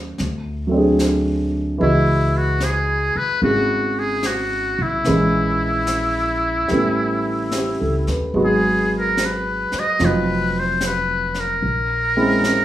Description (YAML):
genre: jazz ballad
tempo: 74 BPM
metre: 4/4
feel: swing 66% on 8ths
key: unclear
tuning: A4 = 440 Hz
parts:
  - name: warm grand piano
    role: accompaniment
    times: 0.0-12.6 s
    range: E3 to E#5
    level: -20 LUFS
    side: right 1 dB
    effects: none
  - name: upright bass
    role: bass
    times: 0.0-12.6 s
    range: F1 to D#2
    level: -24 LUFS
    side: equal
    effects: none
  - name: jazz brush drum kit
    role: drums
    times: 0.2-12.6 s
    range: brushed snare drum, hi-hat, snare drum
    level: -30 LUFS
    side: left 2 dB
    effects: none
  - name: trumpet with metal mute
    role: melody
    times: 1.8-12.6 s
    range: E4 to D#5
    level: -20 LUFS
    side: left 1 dB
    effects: none
room: moderate studio reverb, RT60 0.8 s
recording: studio reverb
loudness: -17 LUFS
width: side -13 dB against mid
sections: 0.0-12.6 A section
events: none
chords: 0.2 D7#11; 1.8 C#m11; 5.1 A#m7b5; 6.7 A9; 8.3 G#m7; 10.0 F5; 11.6 A#m7b5